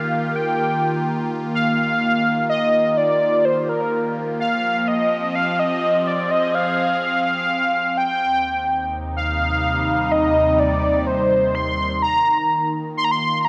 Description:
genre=IDM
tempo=126 BPM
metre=4/4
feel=straight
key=Eb major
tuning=A4 = 440 Hz
part: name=warm velvety synth lead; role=melody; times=0.0-13.5 s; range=Bb4 to C6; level=-21 LUFS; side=equal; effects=chorus, analog delay
part: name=phased analog pad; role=sustained chords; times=0.0-13.5 s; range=Eb2 to Bb4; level=-26 LUFS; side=equal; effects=phaser, chorus, vintage 12-bit sampler grit
room=moderate spring reverb, RT60 1.8 s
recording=echo-heavy mix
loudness=-20 LUFS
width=mono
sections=0.0-13.5 A section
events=none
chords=0.0 Ebadd9; 4.4 Fm7; 8.2 Cm/Eb; 12.0 Ebsus2

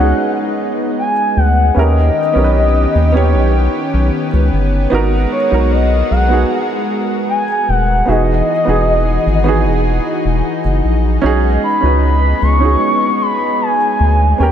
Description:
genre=R&B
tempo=76 BPM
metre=4/4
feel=straight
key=B major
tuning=A4 = 440 Hz
part: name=gliding portamento lead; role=melody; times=0.0-14.5 s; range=C#5 to C#6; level=-17 LUFS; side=left 1 dB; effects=chorus, analog delay
part: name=dark baby grand piano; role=accompaniment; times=0.0-14.5 s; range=B3 to C#5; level=-19 LUFS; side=right 5 dB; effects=none
part: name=lush unison pad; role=sustained chords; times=0.0-14.5 s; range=D#3 to A#4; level=-19 LUFS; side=left 1 dB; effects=chorus
part: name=round analog bass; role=bass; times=0.0-14.5 s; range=D#1 to D#2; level=-13 LUFS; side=equal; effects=none
room=light reverb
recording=none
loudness=-11 LUFS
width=side -9 dB against mid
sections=0.0-14.5 A section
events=none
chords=0.0 B69; 1.8 D#7b13; 4.9 G#m9; 8.1 Emaj9; 11.2 B69

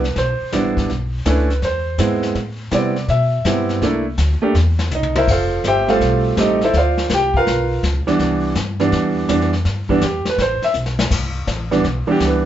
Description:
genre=jazz piano trio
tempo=164 BPM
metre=4/4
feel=swing 66% on 8ths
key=C major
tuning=A4 = 441 Hz
part: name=clear grand piano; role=melody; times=0.0-12.5 s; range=E3 to G5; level=-17 LUFS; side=right 2 dB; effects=none
part: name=upright bass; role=bass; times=0.0-12.5 s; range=F1 to C3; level=-21 LUFS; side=equal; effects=none
part: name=vintage brush drum kit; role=drums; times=0.0-12.5 s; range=brushed snare drum, crash cymbal, hi-hat, kick drum, snare drum, toms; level=-24 LUFS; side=left 3 dB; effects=none
room=moderate studio reverb, RT60 0.5 s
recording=band playing live in one room, nothing above 7.8 kHz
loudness=-15 LUFS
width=side -11 dB against mid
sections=0.0-11.1 A section; 11.1-12.5 B section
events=drum fill 4.9-5.3, 10.7-11.1; grand piano solo 11.1-12.5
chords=0.0 Cmaj7; 0.9 Bm11; 1.6 E; 2.4 Am9; 3.8 C13; 5.3 Fmaj9; 6.7 Dm7; 7.5 G7#9 (rootless); 8.2 Cmaj7

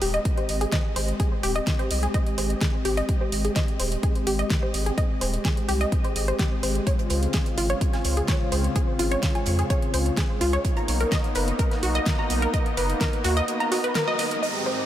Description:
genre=progressive house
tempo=127 BPM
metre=4/4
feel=straight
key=Ab major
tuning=A4 = 439 Hz
part: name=warm analog pad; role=sustained chords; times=0.0-14.9 s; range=Ab2 to G4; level=-30 LUFS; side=left 1 dB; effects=chorus, tremolo, sidechain pumping
part: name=wide unison pluck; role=arpeggios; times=0.0-14.7 s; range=F4 to A#5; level=-27 LUFS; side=equal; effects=sidechain pumping, analog delay
part: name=round analog bass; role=bass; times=0.0-13.4 s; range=Eb1 to F2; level=-26 LUFS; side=equal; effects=sidechain pumping
part: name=pop drum kit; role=drums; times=0.0-14.9 s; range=finger snaps, hi-hat, snare drum, tambourine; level=-31 LUFS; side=right 1 dB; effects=sidechain pumping on hats, low-pass filter on hats, low-pass filter on snare, sidechain pumping on perc, low-pass filter on perc
part: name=electronic kick drum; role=drums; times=0.3-13.1 s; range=none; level=-25 LUFS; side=equal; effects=none
part: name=deep reggae drum kit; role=drums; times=6.9-14.8 s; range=hi-hat, snare drum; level=-39 LUFS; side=right 4 dB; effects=none
part: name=downlifter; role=sound effects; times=14.4-14.9 s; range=none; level=-36 LUFS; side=right 3 dB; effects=none
room=moderate huge ambient reverb, RT60 8.7 s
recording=dreamy mix soaked in reverb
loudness=-22 LUFS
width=side -12 dB against mid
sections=0.0-14.4 A section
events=filter sweep on synth pluck 0.0-14.4; filter sweep on analog synth pad 0.0-14.4; band accent 14.0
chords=0.0 Abmaj7; 6.9 Dbmaj7; 10.6 Bmaj7

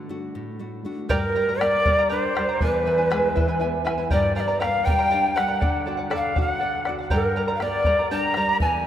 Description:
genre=andean folk, Andean ensemble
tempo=80 BPM (dotted quarters)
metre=6/8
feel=straight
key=G dorian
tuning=A4 = 440 Hz
part: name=nylon-string guitar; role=accompaniment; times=0.0-8.9 s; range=E2 to D5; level=-29 LUFS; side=left 1 dB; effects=none
part: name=mellow quena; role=melody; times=1.1-8.9 s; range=Bb4 to Bb5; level=-23 LUFS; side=equal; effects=none
part: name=pan flute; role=second line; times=1.1-8.9 s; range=Bb4 to Bb5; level=-27 LUFS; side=equal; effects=none
part: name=charango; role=accompaniment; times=1.1-8.9 s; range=E4 to Bb5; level=-28 LUFS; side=right 3 dB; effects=none
part: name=bombo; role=percussion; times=1.1-8.7 s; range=none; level=-27 LUFS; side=equal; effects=none
room=wet cathedral reverb, RT60 4.8 s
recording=in a vast, echoing space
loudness=-20 LUFS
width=side -10 dB against mid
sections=0.0-1.1 A section; 1.1-8.9 B section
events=none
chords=0.0 D; 1.1 Gm; 2.6 E; 4.1 Gm; 5.6 D; 7.1 Gm

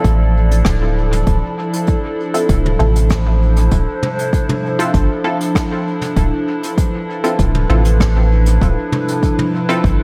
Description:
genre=ambient dub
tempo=98 BPM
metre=4/4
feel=straight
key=D dorian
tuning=A4 = 440 Hz
part: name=warbly tape-like pad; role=sustained chords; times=0.0-10.0 s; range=F3 to D5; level=-22 LUFS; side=equal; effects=chorus, built-in reverb, phaser
part: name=soft dub sub bass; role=bass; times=0.0-10.0 s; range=D1 to A1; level=-16 LUFS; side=equal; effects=none
part: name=electronic kick drum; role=drums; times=0.0-10.0 s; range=none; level=-19 LUFS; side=equal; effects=overdrive
part: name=jazz brush drum kit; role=drums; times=0.0-10.0 s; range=hi-hat, rim click, toms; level=-27 LUFS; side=equal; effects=dub echo
part: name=filtered dub chord stab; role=stabs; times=2.3-9.8 s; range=C4 to A4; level=-25 LUFS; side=equal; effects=chorus, dub echo
room=light reverb, small room ambience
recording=none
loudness=-16 LUFS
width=mono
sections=0.0-10.0 A section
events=none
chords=0.0 Dm9

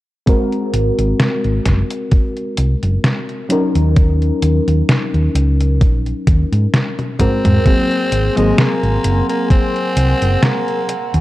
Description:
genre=vaporwave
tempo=65 BPM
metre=4/4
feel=swing 55% on 16ths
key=unclear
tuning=A4 = 440 Hz
part: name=mellow FM electric piano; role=accompaniment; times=0.3-10.9 s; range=Gb3 to Bb4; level=-19 LUFS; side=left 1 dB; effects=wide subtle chorus, tape echo
part: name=detuned 8-bit digital drum machine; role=drums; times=0.3-11.2 s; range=hi-hat, snare drum, toms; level=-18 LUFS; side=equal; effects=none
part: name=electronic kick drum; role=drums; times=0.3-9.7 s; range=none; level=-13 LUFS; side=equal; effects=overdrive
part: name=hollow-body short-scale fingered electric bass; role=bass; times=0.7-11.2 s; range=Gb1 to Ab2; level=-15 LUFS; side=equal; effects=none
part: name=raspy tenor saxophone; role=melody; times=7.2-11.1 s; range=Ab3 to C4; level=-20 LUFS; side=equal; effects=tape echo
part: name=warbly tape-like pad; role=sustained chords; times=7.7-11.2 s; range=Bb4 to Db6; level=-25 LUFS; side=right 1 dB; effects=chorus, built-in reverb
room=light reverb, digital ambience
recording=dark, warm production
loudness=-13 LUFS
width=side -16 dB against mid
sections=0.3-7.7 A section; 7.7-11.2 B section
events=drum fill 7.0-7.7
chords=0.3 Ab9; 3.5 Ebm7; 7.2 Ab9

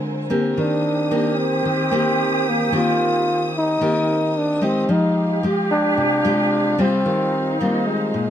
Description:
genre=bossa nova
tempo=111 BPM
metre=4/4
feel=straight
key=unclear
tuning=A4 = 444 Hz
part: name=nylon-string guitar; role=accompaniment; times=0.0-8.3 s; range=Bb2 to G4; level=-21 LUFS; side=left 1 dB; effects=none
part: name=warm symphonic string section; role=sustained chords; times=0.0-8.3 s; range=D3 to Eb6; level=-30 LUFS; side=equal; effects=none
part: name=growling trombone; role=melody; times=0.6-8.3 s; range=Ab3 to F4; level=-20 LUFS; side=equal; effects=none
part: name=bright large flute ensemble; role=second line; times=0.6-8.3 s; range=Eb4 to G4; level=-26 LUFS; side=right 3 dB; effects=none
room=light reverb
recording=close, detailed microphones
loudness=-17 LUFS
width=side -10 dB against mid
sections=0.0-8.3 A section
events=none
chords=0.0 Bb9/D; 0.6 Cm7/Eb; 4.9 Fm9; 7.1 Eb69

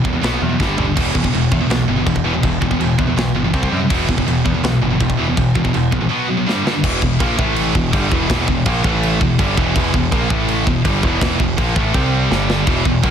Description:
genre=heavy metal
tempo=164 BPM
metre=4/4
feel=straight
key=E minor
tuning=A4 = 439 Hz
part: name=scooped high-gain guitar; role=riff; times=0.0-13.1 s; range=E2 to C4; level=-20 LUFS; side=left 9 dB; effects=distortion
part: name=scooped high-gain guitar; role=riff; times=0.0-13.1 s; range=E2 to C4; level=-20 LUFS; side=right 11 dB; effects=distortion
part: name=growling picked electric bass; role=bass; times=0.0-13.1 s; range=E1 to F#2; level=-21 LUFS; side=equal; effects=overdrive
part: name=tight metal drum kit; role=drums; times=0.0-13.1 s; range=china cymbal, crash cymbal, kick drum, snare drum, toms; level=-20 LUFS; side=equal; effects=none
room=little or no reverb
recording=dense, heavily limited modern master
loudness=-14 LUFS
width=side -8 dB against mid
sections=0.0-6.8 A section; 6.8-13.1 B section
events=drum fill 0.6-1.0, 6.5-6.8, 12.3-12.7; half time 6.8-13.1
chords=0.2 B5; 0.6 G5; 1.0 E5; 3.5 C5; 3.9 E5; 6.1 B5; 6.5 G5; 6.8 E5; 7.4 A5; 7.7 Em; 8.8 A5; 9.2 Em; 10.3 A5; 10.7 Em; 11.9 C5; 12.3 G5

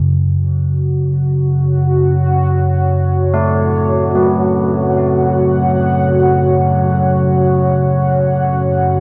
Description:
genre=dark ambient drone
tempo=free time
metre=none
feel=none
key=F# minor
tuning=A4 = 440 Hz
part: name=carillon bells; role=arpeggios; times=0.0-9.0 s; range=F#3 to C#4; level=-22 LUFS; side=equal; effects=diffuse ambient delay
part: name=deep rumbling drone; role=drone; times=0.0-9.0 s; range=F#2 to C#3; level=-17 LUFS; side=equal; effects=built-in reverb
part: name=sweeping resonant pad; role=sustained chords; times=0.1-9.0 s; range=F#4 to F#5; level=-19 LUFS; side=equal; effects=chorus
room=wet cathedral reverb, RT60 5.8 s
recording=dark, warm production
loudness=-14 LUFS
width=mono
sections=0.0-9.0 A section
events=none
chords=0.0 F#m

